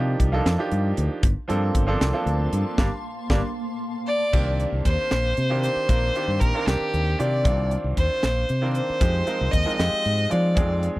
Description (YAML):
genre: electric jazz fusion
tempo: 77 BPM (dotted quarters)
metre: 6/8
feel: straight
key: C minor from 4.3 s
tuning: A4 = 440 Hz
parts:
  - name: bright grand piano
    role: accompaniment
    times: 0.0-11.0 s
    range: Eb3 to Bb4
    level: -28 LUFS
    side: right 2 dB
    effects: none
  - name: fingered electric bass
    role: bass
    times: 0.0-11.0 s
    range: G1 to F3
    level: -23 LUFS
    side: equal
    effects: none
  - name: crisp fusion drum kit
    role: drums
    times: 0.2-10.9 s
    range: crash cymbal, hi-hat, kick drum, snare drum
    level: -23 LUFS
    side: equal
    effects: none
  - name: granular cloud pad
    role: sustained chords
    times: 2.1-4.3 s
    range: Bb3 to C6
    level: -34 LUFS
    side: left 1 dB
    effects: built-in reverb
  - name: clear violin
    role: melody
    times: 4.1-10.8 s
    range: G4 to Eb5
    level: -25 LUFS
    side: left 1 dB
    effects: none
room: little or no reverb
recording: dry, close 1970s-style studio recording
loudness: -20 LUFS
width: side -18 dB against mid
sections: 0.0-4.3 A section; 4.3-11.0 B section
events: band accent 2.8-4.3; grand piano fill 3.6-4.3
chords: 0.0 Cm11; 1.2 Gm11; 4.3 Cm9; 9.0 Fm9